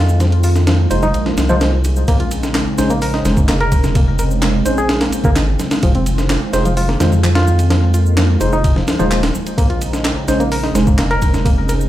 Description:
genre	breakbeat, breaks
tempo	128 BPM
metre	4/4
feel	straight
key	Bb minor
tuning	A4 = 441 Hz
part	phased analog pad	sustained chords	0.0-11.9 s	Db3 to F4	-22 LUFS	right 1 dB	phaser, chorus, sidechain pumping
part	barky reed electric piano	riff	0.0-11.7 s	Eb3 to Bb4	-21 LUFS	equal	overdrive, vintage 12-bit sampler grit, ping-pong delay
part	saturated sub bass	bass	0.0-11.9 s	Eb1 to F2	-16 LUFS	equal	tube saturation
part	electronic shaker and handclaps	drums	0.1-11.9 s	none	-28 LUFS	equal	none
part	bongos and congas	percussion	0.1-11.6 s	none	-28 LUFS	right 2 dB	none
part	breakbeat sampler-style drum kit	drums	0.2-11.8 s	hi-hat, kick drum, ride cymbal, snare drum	-18 LUFS	equal	none
part	bright tine electric piano	stabs	0.9-10.9 s	Ab3 to C5	-21 LUFS	equal	phaser, ping-pong delay
room	moderate studio reverb, RT60 0.5 s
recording	played on a big sound system in a bare room, large studio reverb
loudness	-12 LUFS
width	side -14 dB against mid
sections	0.0-11.9 A section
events	none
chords	0.0 Fm7; 2.1 Bbm11; 5.8 Fm7; 9.6 Bbm11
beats	| 0.20 0.67 1.14 1.61 | 2.08 2.55 3.02 3.49 | 3.96 4.42 4.89 5.36 | 5.83 6.30 6.77 7.24 | 7.71 8.17 8.64 9.11 | 9.58 10.05 10.52 10.99 | 11.46

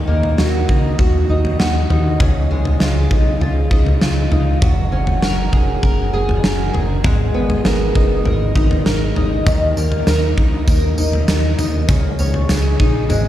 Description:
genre	dream pop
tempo	99 BPM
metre	4/4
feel	straight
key	unclear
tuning	A4 = 440 Hz
part	fingerpicked twelve-string acoustic guitar	arpeggios	0.0-13.3 s	C#3 to A#4	-20 LUFS	equal	analog chorus, tape echo
part	chorused synth bass	bass	0.0-13.3 s	E#1 to D#2	-18 LUFS	equal	none
part	huge arena drum kit	drums	0.2-13.2 s	kick drum, snare drum, tambourine, toms	-17 LUFS	equal	none
room	light reverb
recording	played on a big sound system in a bare room, stone room reverb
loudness	-14 LUFS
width	side -12 dB against mid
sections	0.0-13.3 A section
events	none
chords	0.0 D#m; 2.2 C#add9; 4.6 F#add9; 7.0 G#madd9; 9.5 D#5; 11.9 C#sus2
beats	0.38 0.98 1.59 | 2.20 2.80 3.41 4.01 | 4.62 5.23 5.83 6.44 | 7.04 7.65 8.26 8.86 | 9.47 10.07 10.68 11.29 | 11.89 12.50 13.11

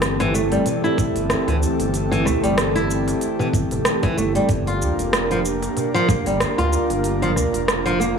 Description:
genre	organic downtempo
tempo	94 BPM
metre	4/4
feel	swing 56% on 16ths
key	unclear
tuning	A4 = 440 Hz
part	airy breathy pad	sustained chords	0.0-8.2 s	E3 to Bb4	-23 LUFS	equal	chorus, sidechain pumping
part	round analog bass	bass	0.0-8.2 s	F1 to D2	-25 LUFS	equal	none
part	organic electronic drum kit	drums	0.0-8.2 s	hi-hat, rim click, shaker	-24 LUFS	right 1 dB	none
part	flamenco guitar	arpeggios	0.2-8.2 s	E3 to F4	-22 LUFS	right 1 dB	low-pass filter, analog delay
part	darbuka	percussion	0.5-7.5 s	none	-31 LUFS	left 3 dB	none
part	electronic kick drum	drums	1.0-6.2 s	none	-21 LUFS	equal	none
room	light reverb, digital ambience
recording	dry, gritty hardware recording, small room reverb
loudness	-18 LUFS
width	side -6 dB against mid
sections	0.0-8.2 A section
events	none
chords	0.0 Am7/G; 4.5 Gm7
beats	0.02 0.66 1.30 | 1.94 2.58 3.21 3.85 | 4.49 5.13 5.77 6.41 | 7.04 7.68

